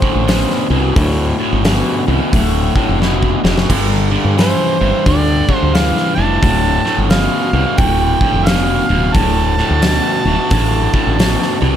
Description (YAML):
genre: blues rock power trio and southern rock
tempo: 88 BPM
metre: 4/4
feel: swing 62% on 8ths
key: D minor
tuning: A4 = 444 Hz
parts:
  - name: overdriven harmonica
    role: melody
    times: 0.0-11.8 s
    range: C5 to A5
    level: -19 LUFS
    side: right 3 dB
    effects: none
  - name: cranked stack guitar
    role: riff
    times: 0.0-11.8 s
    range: D2 to E3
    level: -16 LUFS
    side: left 1 dB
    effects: overdrive
  - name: huge arena drum kit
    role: drums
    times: 0.0-11.5 s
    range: crash cymbal, hi-hat, kick drum, snare drum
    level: -18 LUFS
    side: equal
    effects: none
  - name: woody fretless electric bass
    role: bass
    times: 0.2-11.8 s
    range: D1 to G2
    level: -16 LUFS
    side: equal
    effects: none
room: studio ambience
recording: none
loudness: -12 LUFS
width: side -10 dB against mid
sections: 0.0-11.8 A section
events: drum fill 3.0-3.7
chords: 0.0 Dm7; 3.7 G5; 6.4 Dm